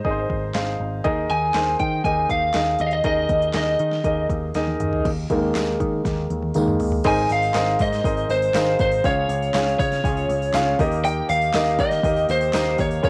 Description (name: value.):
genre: piano-driven pop.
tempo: 120 BPM.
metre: 4/4.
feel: straight.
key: unclear.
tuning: A4 = 440 Hz.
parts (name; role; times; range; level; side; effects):
lightly driven lead guitar; melody; 0.0-13.1 s; C5 to Ab5; -24 LUFS; equal; plate reverb.
warm baby grand piano; accompaniment; 0.0-13.1 s; Ab2 to Ab5; -26 LUFS; equal; cassette tape, plate reverb.
deep house drum kit; drums; 0.0-13.1 s; crash cymbal, handclaps, hi-hat, kick drum, snare drum, toms; -30 LUFS; equal; overdrive, cassette tape.
picked electric bass; bass; 0.1-13.1 s; Ab1 to Eb3; -29 LUFS; equal; none.
tambourine; percussion; 5.6-12.7 s; none; -46 LUFS; equal; none.
room: moderate small room reverb, RT60 0.5 s.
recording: home recording on cassette.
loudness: -21 LUFS.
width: mono.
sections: 0.0-5.0 A section; 5.0-7.0 B section; 7.0-13.1 C section.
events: drum fill 4.5-5.0, 6.0-7.0; grand piano solo 5.0-7.0.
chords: 0.0 Ab; 1.1 Ebsus4; 7.0 Abadd9; 9.0 Db; 10.8 Eb.